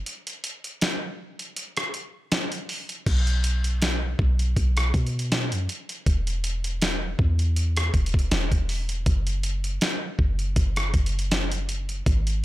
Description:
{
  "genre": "contemporary R&B",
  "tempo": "80 BPM",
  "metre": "4/4",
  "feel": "swing 54% on 16ths",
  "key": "unclear",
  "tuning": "A4 = 440 Hz",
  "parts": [
    { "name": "warm 808-style bass", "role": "bass", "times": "0.0-12.4 s", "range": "E1 to B2", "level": "-24 LUFS", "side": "equal", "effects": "none" },
    { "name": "dusty soul sampler-style drum kit", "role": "drums", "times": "0.1-12.4 s", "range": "crash cymbal, hi-hat, kick drum, rim click, snare drum", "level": "-25 LUFS", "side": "equal", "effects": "none" }
  ],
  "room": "little or no reverb",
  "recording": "none",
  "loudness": "-22 LUFS",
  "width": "side -16 dB against mid",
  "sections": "0.0-3.1 A section; 3.1-12.4 A section",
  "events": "break 0.1-3.1",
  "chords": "none"
}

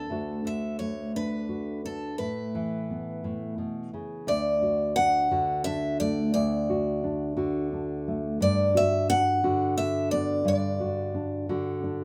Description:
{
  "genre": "acoustic folk-pop ballad",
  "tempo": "58 BPM (dotted quarters)",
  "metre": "6/8",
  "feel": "straight",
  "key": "D major",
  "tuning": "A4 = 440 Hz",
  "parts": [
    { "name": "picked steel-string acoustic guitar", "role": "melody", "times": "0.0-11.5 s", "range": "A4 to F#5", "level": "-29 LUFS", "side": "equal", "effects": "none" },
    { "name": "nylon-string guitar", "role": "accompaniment", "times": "0.0-12.0 s", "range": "D2 to F#4", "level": "-31 LUFS", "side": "equal", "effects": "none" }
  ],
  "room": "moderate studio reverb, RT60 0.5 s",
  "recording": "none",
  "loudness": "-27 LUFS",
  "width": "mono",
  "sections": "0.0-4.3 A section; 4.3-12.0 B section",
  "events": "none",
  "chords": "0.1 D; 2.2 Asus2; 4.3 D; 8.4 Gmaj7(no3)"
}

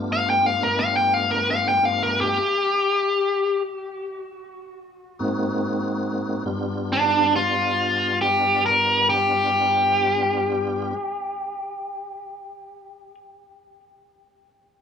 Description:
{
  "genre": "blues",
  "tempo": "46-58 BPM (dotted quarters)",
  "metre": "12/8",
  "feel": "straight",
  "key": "G mixolydian",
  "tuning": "A4 = 444 Hz",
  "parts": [
    { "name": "tonewheel organ", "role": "sustained chords", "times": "0.0-10.9 s", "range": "G2 to Gb4", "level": "-26 LUFS", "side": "left 1 dB", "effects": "slow rotary speaker, overdrive, chorus vibrato" },
    { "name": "biting overdriven guitar", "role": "melody", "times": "0.1-13.1 s", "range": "D4 to G5", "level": "-20 LUFS", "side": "left 1 dB", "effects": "analog delay" }
  ],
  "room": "light reverb",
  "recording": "rough home demo mix",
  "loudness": "-19 LUFS",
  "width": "side -7 dB against mid",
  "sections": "0.0-6.5 A section; 6.5-11.7 B section",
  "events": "slowing down 0.4-6.5; stop 1.8-5.2",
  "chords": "0.0 G9; 5.2 Ab9; 6.5 G7"
}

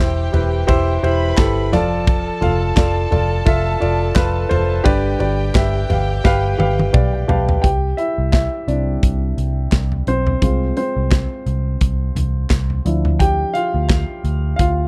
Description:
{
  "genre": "piano-driven pop",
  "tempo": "86 BPM",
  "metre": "4/4",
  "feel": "swing 56% on 16ths",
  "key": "C major",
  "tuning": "A4 = 441 Hz",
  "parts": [
    { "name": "warm chamber violin section", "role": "second line", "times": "0.0-7.6 s", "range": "G4 to B5", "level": "-29 LUFS", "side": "equal", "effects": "none" },
    { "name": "dark concert grand piano", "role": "accompaniment", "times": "0.0-14.9 s", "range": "G2 to A5", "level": "-23 LUFS", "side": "equal", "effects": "none" },
    { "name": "vintage muted picked electric bass", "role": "bass", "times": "0.0-14.9 s", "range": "E1 to D2", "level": "-22 LUFS", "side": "equal", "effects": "none" },
    { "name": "modern studio drum kit", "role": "drums", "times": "0.3-14.8 s", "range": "handclaps, hi-hat, kick drum, ride cymbal, snare drum, toms", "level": "-20 LUFS", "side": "equal", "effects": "none" }
  ],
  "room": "little or no reverb",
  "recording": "dry, close 1970s-style studio recording",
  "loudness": "-18 LUFS",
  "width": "mono",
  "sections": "0.0-7.6 A section; 7.6-14.9 B section",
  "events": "drum fill 6.2-7.6; grand piano fill 6.6-7.6; grand piano solo 7.6-14.9",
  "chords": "0.0 C/E; 1.7 Dm/F; 4.9 G; 7.6 C; 10.4 Fm/C; 12.9 Dmadd9"
}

